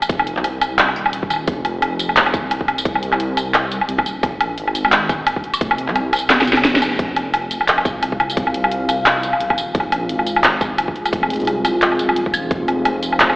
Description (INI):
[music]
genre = half-time drum and bass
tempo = 174 BPM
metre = 4/4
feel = swing 57% on 16ths, half-time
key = F minor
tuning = A4 = 440 Hz
[part]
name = drum and bass drum kit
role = drums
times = 0.0-13.4 s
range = handclaps, hi-hat, snare drum, tambourine, woodblock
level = -16 LUFS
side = equal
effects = none
[part]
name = dark detuned saw bass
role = bass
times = 0.1-13.4 s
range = Eb1 to C2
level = -25 LUFS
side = equal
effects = none
[part]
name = electronic kick drum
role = drums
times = 0.1-12.6 s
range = none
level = -21 LUFS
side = equal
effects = none
[part]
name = deep dark ambient pad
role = sustained chords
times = 7.8-13.4 s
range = C4 to F5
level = -22 LUFS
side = equal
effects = chorus, built-in reverb, vintage 12-bit sampler grit, sidechain pumping
[sound]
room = wet lush hall reverb, RT60 1.9 s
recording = played on a big sound system in a bare room, large studio reverb, AM radio sound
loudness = -15 LUFS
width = side -25 dB against mid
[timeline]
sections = 0.0-7.0 A section; 7.0-13.4 A section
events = drop 0.0-7.0, 7.0-13.4; drum fill 6.3-7.0; band accent 6.8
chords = 0.0 F5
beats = | 0.09 0.44 0.78 1.13 | 1.47 1.82 2.16 2.51 | 2.85 3.20 3.54 3.89 | 4.23 4.58 4.92 5.27 | 5.61 5.96 6.30 6.65 | 6.99 7.33 7.68 8.03 | 8.37 8.71 9.06 9.40 | 9.75 10.09 10.44 10.78 | 11.13 11.47 11.82 12.16 | 12.51 12.85 13.20